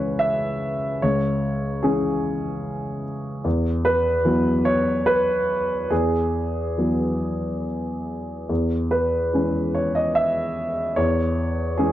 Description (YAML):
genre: neoclassical minimalist piano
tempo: 73 BPM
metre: 3/4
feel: rubato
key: C# minor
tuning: A4 = 440 Hz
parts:
  - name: warm baby grand piano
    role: solo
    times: 0.0-11.9 s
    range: C#2 to E5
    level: -20 LUFS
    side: equal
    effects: none
room: small room ambience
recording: dry, close 1970s-style studio recording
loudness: -20 LUFS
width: side -13 dB against mid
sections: 0.0-11.9 A section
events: none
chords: 0.0 C#m; 3.4 Eadd9; 8.5 C#m/E